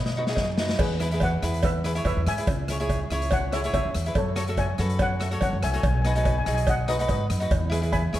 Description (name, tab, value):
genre	calypso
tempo	143 BPM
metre	4/4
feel	straight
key	E major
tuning	A4 = 442 Hz
part	steel pan	melody	0.0-8.2 s	G#4 to B5	-30 LUFS	left 2 dB	none
part	upright bass	bass	0.0-8.2 s	B1 to B2	-26 LUFS	equal	none
part	street-band drum kit	drums	0.1-8.2 s	crash cymbal, hi-hat, kick drum, rim click, snare drum	-28 LUFS	equal	none
part	cavaquinho	accompaniment	0.2-8.2 s	D#4 to E5	-30 LUFS	right 1 dB	none
part	cowbell	percussion	0.4-8.0 s	none	-34 LUFS	right 4 dB	none
room	light reverb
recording	dark, warm production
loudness	-22 LUFS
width	side -14 dB against mid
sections	0.8-8.2 A section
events	drum fill 0.0-0.8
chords	0.0 B; 0.8 Eadd9; 2.5 C#m; 4.2 F#m; 5.8 B; 7.5 E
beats	0.37 | 0.79 1.21 1.63 2.05 | 2.47 2.89 3.31 3.73 | 4.15 4.57 4.99 5.41 | 5.83 6.25 6.67 7.09 | 7.51 7.93